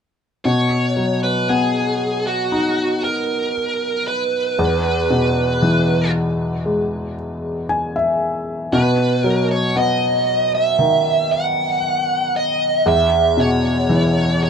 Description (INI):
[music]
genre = pop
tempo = 58 BPM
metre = 4/4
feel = straight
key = B major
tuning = A4 = 441 Hz
[part]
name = high-gain lead guitar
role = melody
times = 0.5-14.5 s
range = F#4 to F#5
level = -18 LUFS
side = right 3 dB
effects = distortion
[part]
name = felt-muted upright piano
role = accompaniment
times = 0.5-14.5 s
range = E2 to G#5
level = -19 LUFS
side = left 2 dB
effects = none
[sound]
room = moderate studio reverb, RT60 0.6 s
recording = rough home demo mix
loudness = -16 LUFS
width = side -7 dB against mid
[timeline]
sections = 0.5-14.5 A section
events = felt piano fill 7.2-8.7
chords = 0.5 B; 4.6 E; 8.7 B; 12.9 E5